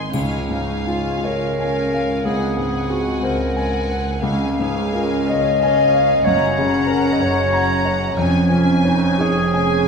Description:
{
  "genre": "classical, romantic movement for piano and orchestra",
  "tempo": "52-64 BPM (dotted quarters)",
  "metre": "12/8",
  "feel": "rubato",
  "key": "Db major",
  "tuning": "A4 = 439 Hz",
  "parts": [
    { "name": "dark studio violin section", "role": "melody", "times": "0.0-9.9 s", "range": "Ab5 to C6", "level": "-30 LUFS", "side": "left 3 dB", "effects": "none" },
    { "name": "warm concert grand piano", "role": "melody", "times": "0.0-9.9 s", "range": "Db2 to Bb5", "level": "-21 LUFS", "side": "left 1 dB", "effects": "none" },
    { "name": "rich studio violin section", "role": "second line", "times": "0.0-9.9 s", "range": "F5 to Ab5", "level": "-28 LUFS", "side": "left 2 dB", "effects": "none" },
    { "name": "dark studio viola section", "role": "accompaniment", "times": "0.0-9.9 s", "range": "C4 to Eb4", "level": "-26 LUFS", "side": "right 1 dB", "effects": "none" },
    { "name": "warm studio cello section", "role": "bass", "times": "0.0-9.9 s", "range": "Db2 to Eb3", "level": "-27 LUFS", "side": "right 2 dB", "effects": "none" },
    { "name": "dark studio double bass section", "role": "bass", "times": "0.1-9.9 s", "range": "F1 to Db2", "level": "-28 LUFS", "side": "right 2 dB", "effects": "none" },
    { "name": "timpani", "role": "percussion", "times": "0.1-5.2 s", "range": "Db3", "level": "-30 LUFS", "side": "right 1 dB", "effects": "none" },
    { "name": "triangle", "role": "percussion", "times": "0.1-1.5 s", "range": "none", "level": "-44 LUFS", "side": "left 4 dB", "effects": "none" },
    { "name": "mellow clarinet", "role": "second line", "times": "0.5-9.9 s", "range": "Db4 to Eb5", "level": "-20 LUFS", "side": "left 1 dB", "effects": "none" }
  ],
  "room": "wet recital hall reverb, RT60 1.7 s",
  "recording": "minimal, uncompressed stereo recording",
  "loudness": "-16 LUFS",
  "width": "side -5 dB against mid",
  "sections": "0.0-9.9 A section",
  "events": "none",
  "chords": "0.1 Db; 2.2 Ab7/Db; 4.2 Db; 6.3 Gb; 8.2 Db/F"
}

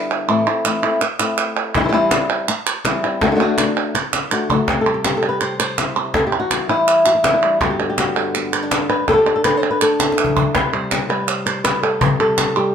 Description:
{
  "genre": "flamenco",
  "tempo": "164 BPM",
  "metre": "4/4",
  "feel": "straight",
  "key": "unclear",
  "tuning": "A4 = 441 Hz",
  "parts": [
    { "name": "flamenco guitar", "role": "melody", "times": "0.0-12.7 s", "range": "G2 to C5", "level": "-17 LUFS", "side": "left 1 dB", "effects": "none" },
    { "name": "palmas hand claps", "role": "percussion", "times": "0.1-12.7 s", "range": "none", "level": "-20 LUFS", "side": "right 6 dB", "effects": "none" },
    { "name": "cajon", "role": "percussion", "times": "1.8-12.6 s", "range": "none", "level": "-22 LUFS", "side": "left 3 dB", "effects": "none" }
  ],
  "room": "moderate studio reverb, RT60 0.7 s",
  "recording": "minimal, uncompressed stereo recording",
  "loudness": "-15 LUFS",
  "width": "side -7 dB against mid",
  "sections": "0.0-4.7 A section; 4.7-12.7 B section",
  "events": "drum fill 3.9-4.7, 10.0-10.5",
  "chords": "0.3 Am; 1.8 C; 3.2 D; 4.7 C; 7.6 G; 9.1 Dsus2; 10.5 C5"
}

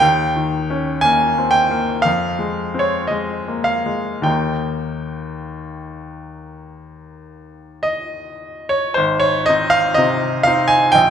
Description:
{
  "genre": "classical, romantic nocturne for solo piano",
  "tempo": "47-62 BPM",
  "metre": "4/4",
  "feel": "rubato",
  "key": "Ab major",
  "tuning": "A4 = 439 Hz",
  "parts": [
    { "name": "clear baby grand piano", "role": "solo", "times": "0.0-11.1 s", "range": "Ab1 to Ab5", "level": "-16 LUFS", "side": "equal", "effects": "none" }
  ],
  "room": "moderate recital hall reverb, RT60 1.4 s",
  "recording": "minimal, uncompressed stereo recording",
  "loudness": "-15 LUFS",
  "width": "side -8 dB against mid",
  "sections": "0.0-9.0 A section; 9.0-11.1 B section",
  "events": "none",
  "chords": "0.0 Eb7; 2.1 Fm; 4.3 Eb; 9.0 Ab"
}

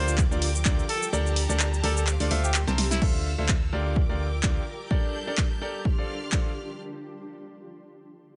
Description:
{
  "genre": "piano house",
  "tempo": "127 BPM",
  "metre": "4/4",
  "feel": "swing 55% on 16ths",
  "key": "D minor",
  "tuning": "A4 = 440 Hz",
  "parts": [
    { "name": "warm trumpet", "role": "melody", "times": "0.0-3.0 s", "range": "E4 to C5", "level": "-35 LUFS", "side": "equal", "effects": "tape echo" },
    { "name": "bright symphonic violin section", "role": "sustained chords", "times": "0.0-6.8 s", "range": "D4 to G6", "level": "-41 LUFS", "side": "equal", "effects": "sidechain pumping" },
    { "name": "bright baby grand piano", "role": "riff", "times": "0.0-6.5 s", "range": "D3 to A5", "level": "-35 LUFS", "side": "equal", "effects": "sidechain pumping, low-pass filter, tape echo" },
    { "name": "solid FM bass", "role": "bass", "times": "0.0-4.6 s", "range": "C2 to D2", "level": "-29 LUFS", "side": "equal", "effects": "sidechain pumping" },
    { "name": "granular cloud pad", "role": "texture", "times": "0.0-6.8 s", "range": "F4 to E6", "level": "-42 LUFS", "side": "equal", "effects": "built-in reverb, sidechain pumping" },
    { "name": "punchy analog drum machine", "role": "drums", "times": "0.1-6.4 s", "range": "cabasa, crash cymbal, handclaps, hi-hat, snare drum", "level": "-31 LUFS", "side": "equal", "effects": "overdrive, studio reverb" },
    { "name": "electronic kick drum", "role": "drums", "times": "0.2-6.4 s", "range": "none", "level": "-28 LUFS", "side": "equal", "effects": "studio reverb" }
  ],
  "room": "digital ambience",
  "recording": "nothing above 10.3 kHz",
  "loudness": "-26 LUFS",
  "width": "mono",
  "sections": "0.0-3.0 A section; 3.0-6.8 B section",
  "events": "drop 0.0-3.0; kick drops out 1.1-3.0; drum fill 2.7-3.0",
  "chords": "0.0 Bb6/D; 1.1 Gmadd9/D; 2.1 Dm7; 2.5 C7; 3.0 Fmaj7/D; 3.7 Bb6/D; 4.9 Gmadd9/D; 5.9 Dm7"
}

